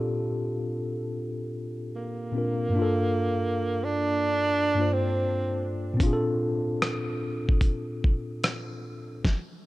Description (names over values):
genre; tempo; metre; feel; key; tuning
lo-fi hip hop; 74 BPM; 4/4; swing 62% on 16ths; Bb major; A4 = 440 Hz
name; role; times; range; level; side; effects
tine electric piano; accompaniment; 0.0-9.3 s; G2 to C5; -28 LUFS; left 1 dB; medium stereo tremolo, cassette tape
breathy tenor saxophone; melody; 2.0-5.7 s; Bb3 to D4; -27 LUFS; right 2 dB; analog delay
dusty soul sampler-style drum kit; drums; 6.0-9.5 s; hi-hat, kick drum, rim click, snare drum; -24 LUFS; equal; overdrive, vintage 12-bit sampler grit
room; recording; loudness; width
light reverb; none; -25 LUFS; side -18 dB against mid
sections
0.0-9.7 A section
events
none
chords
0.0 Bbmaj7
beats
0.33 1.14 1.95 | 2.76 3.57 4.38 5.19 | 6.00 6.81 7.62 8.43 | 9.24